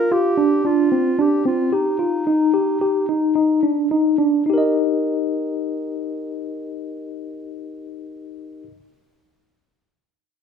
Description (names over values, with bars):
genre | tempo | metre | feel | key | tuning
contemporary instrumental, chamber music in an uneven meter | 109 BPM | 5/4 | straight | Eb major | A4 = 438 Hz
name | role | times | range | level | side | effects
dark clarinet | melody | 0.0-3.9 s | Eb4 to Bb4 | -22 LUFS | equal | none
mellow tine electric piano | arpeggios | 0.0-8.7 s | C4 to Eb5 | -19 LUFS | left 1 dB | medium stereo tremolo
room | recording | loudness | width
moderate recital hall reverb, RT60 1.6 s | minimal, uncompressed stereo recording | -17 LUFS | side -6 dB against mid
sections
0.0-4.5 A section; 4.5-7.2 B section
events
slowing down 0.1-4.5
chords
0.0 G7(no3); 1.7 Eb